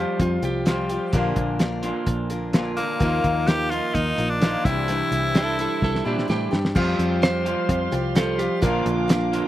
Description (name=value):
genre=folk rock and heartland rock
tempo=128 BPM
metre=4/4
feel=straight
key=unclear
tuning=A4 = 443 Hz
part: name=clean lap steel guitar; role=second line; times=0.0-1.3, 5.4-9.5 s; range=D4 to C5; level=-27 LUFS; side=right 4 dB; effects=none
part: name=picked old ladder-braced acoustic guitar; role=accompaniment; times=0.0-9.5 s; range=Bb2 to Bb4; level=-29 LUFS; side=left 4 dB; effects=slapback echo
part: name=electric guitar through a small old amp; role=riff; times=0.0-9.5 s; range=Bb2 to F4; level=-27 LUFS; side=right 1 dB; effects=slapback echo
part: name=fingered electric bass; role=bass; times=0.0-9.4 s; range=Bb1 to Bb2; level=-26 LUFS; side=equal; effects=none
part: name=cloth-damped thuddy drum kit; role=drums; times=0.2-9.4 s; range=crash cymbal, hi-hat, kick drum, snare drum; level=-23 LUFS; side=equal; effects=none
part: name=raspy tenor saxophone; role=melody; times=2.8-6.3 s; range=Bb3 to G4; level=-25 LUFS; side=left 1 dB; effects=none
part: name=bright tonewheel organ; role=sustained chords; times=6.8-9.5 s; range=G4 to D6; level=-34 LUFS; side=equal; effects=slow rotary speaker, overdrive
room=little or no reverb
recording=recorded outdoors, with no room sound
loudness=-20 LUFS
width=side -13 dB against mid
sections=0.0-6.8 A section; 6.8-9.5 B section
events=drum fill 5.8-6.8; electric slide guitar solo 6.8-9.5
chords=0.0 Fsus2; 1.1 Bb; 3.0 Ebsus2; 4.6 Cadd9; 6.8 Fsus2; 8.6 Bb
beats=0.19 0.66 | 1.13 1.60 2.07 2.54 | 3.01 3.47 3.94 4.41 | 4.88 5.35 5.82 6.28 | 6.75 7.22 7.69 8.15 | 8.62 9.09